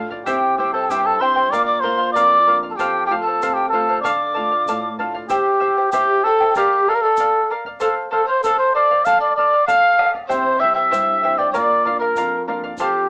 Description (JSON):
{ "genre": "andean folk, Andean ensemble", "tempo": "96 BPM", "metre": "2/4", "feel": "straight", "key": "unclear", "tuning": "A4 = 442 Hz", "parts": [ { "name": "charango", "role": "accompaniment", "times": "0.0-13.1 s", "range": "E4 to G5", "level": "-26 LUFS", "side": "equal", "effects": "cassette tape" }, { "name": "flamenco guitar", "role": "accompaniment", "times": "0.0-5.3, 10.3-13.1 s", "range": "F2 to F4", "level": "-32 LUFS", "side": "equal", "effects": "cassette tape" }, { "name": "bombo", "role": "percussion", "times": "0.1-12.9 s", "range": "none", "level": "-38 LUFS", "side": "equal", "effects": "none" }, { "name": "trumpet with cup mute", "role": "melody", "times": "0.3-13.1 s", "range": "G4 to F5", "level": "-19 LUFS", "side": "equal", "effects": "none" }, { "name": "breathy bright polished pan flute", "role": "second line", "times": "0.3-13.1 s", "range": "G4 to D6", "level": "-26 LUFS", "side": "equal", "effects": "cassette tape" }, { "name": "egg shaker", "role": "percussion", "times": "0.3-12.9 s", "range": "none", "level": "-44 LUFS", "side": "equal", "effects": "none" } ], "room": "moderate small room reverb, RT60 0.5 s", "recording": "home recording on cassette, small speaker sound", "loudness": "-18 LUFS", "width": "mono", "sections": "0.0-5.3 A section; 5.3-13.1 A section", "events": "none", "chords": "0.3 C; 1.5 Bb; 2.8 F; 4.1 Dm; 5.3 C; 6.6 Bb; 7.8 F; 9.1 Dm; 10.3 C; 11.5 Bb", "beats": "| 0.27 0.90 | 1.53 2.16 | 2.79 3.42 | 4.05 4.68 | 5.31 5.94 | 6.56 7.19 | 7.81 8.44 | 9.06 9.68 | 10.31 10.93 | 11.55 12.17 | 12.79" }